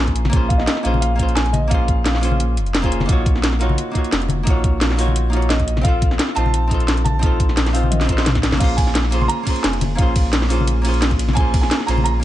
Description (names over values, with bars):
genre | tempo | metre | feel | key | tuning
liquid drum and bass | 174 BPM | 4/4 | swing 53% on 16ths | Bb minor | A4 = 440 Hz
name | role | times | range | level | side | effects
dark concert grand piano | melody | 0.0-2.4, 5.5-12.2 s | Eb5 to C6 | -26 LUFS | right 1 dB | ping-pong delay
archtop guitar, miked and amplified | accompaniment | 0.0-12.2 s | Bb3 to Db5 | -23 LUFS | right 1 dB | tape echo
warm sub bass | bass | 0.0-12.2 s | F1 to Bb1 | -19 LUFS | equal | tube saturation
drum and bass drum kit | drums | 0.1-12.1 s | crash cymbal, hi-hat, ride cymbal, snare drum, toms | -22 LUFS | equal | none
electronic kick drum | drums | 0.1-11.6 s | none | -18 LUFS | equal | none
congas | percussion | 0.2-12.0 s | none | -25 LUFS | left 4 dB | none
room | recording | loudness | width
little or no reverb | nothing above 10.7 kHz | -15 LUFS | side -14 dB against mid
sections
0.0-12.2 A section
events
drum fill 7.9-8.6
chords
0.0 Bbm9; 3.1 Ebm9; 5.8 F7/Bb; 8.6 Bbm9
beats
| 0.33 0.68 1.02 1.36 | 1.71 2.05 2.40 2.74 | 3.09 3.43 3.78 4.12 | 4.47 4.81 5.16 5.50 | 5.85 6.19 6.54 6.88 | 7.23 7.57 7.92 8.26 | 8.61 8.95 9.30 9.64 | 9.98 10.33 10.68 11.02 | 11.37 11.71 12.05